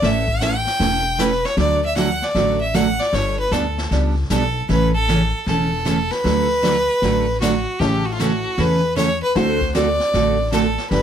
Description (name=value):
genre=country, western swing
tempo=154 BPM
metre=4/4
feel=swing 65% on 8ths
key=D major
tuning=A4 = 441 Hz
part: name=clear fiddle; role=melody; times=0.0-11.0 s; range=F4 to G5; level=-20 LUFS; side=equal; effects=none
part: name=picked steel-string acoustic guitar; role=accompaniment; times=0.0-11.0 s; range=C#3 to B4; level=-21 LUFS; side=right 3 dB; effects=none
part: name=upright bass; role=bass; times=0.0-11.0 s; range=E1 to E2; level=-23 LUFS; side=left 1 dB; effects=none
part: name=vintage brush drum kit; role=drums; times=0.0-11.0 s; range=brushed snare drum, hi-hat, kick drum, snare drum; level=-29 LUFS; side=left 2 dB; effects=none
part: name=honky-tonk upright piano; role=accompaniment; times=7.8-10.4 s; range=A3 to A4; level=-27 LUFS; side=left 5 dB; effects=none
room=light reverb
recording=none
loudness=-16 LUFS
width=side -9 dB against mid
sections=0.0-11.0 A section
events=none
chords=0.0 Aadd9; 1.6 D; 3.1 Gadd9; 4.7 A; 6.2 D; 7.8 A; 9.4 D7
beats=| 0.03 0.42 0.81 1.19 | 1.58 1.97 2.36 2.75 | 3.14 3.53 3.92 4.30 | 4.69 5.08 5.47 5.86 | 6.25 6.64 7.03 7.41 | 7.80 8.19 8.58 8.97 | 9.36 9.75 10.13 10.52 | 10.91